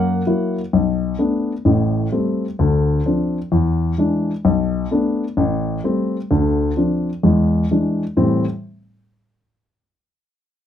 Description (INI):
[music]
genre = solo jazz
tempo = 129 BPM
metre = 4/4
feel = swing 66% on 8ths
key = A minor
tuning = A4 = 439 Hz
[part]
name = dark baby grand piano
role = solo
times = 0.0-8.4 s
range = A1 to F#5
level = -16 LUFS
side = left 1 dB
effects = none
[sound]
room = little or no reverb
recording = close, detailed microphones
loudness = -16 LUFS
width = side -10 dB against mid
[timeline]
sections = 0.7-8.1 A section; 8.1-10.0 B section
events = none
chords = 0.0 F#7; 0.7 Bm7; 1.7 Am7; 2.6 Dm7; 3.5 E7; 4.4 Bm7; 5.4 Am7; 6.3 Dm7; 7.2 E7; 8.1 Am7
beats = 0.27 | 0.73 1.19 1.66 2.12 | 2.58 3.05 3.51 3.97 | 4.44 4.90 5.36 5.83 | 6.29 6.76 7.22 7.68 | 8.15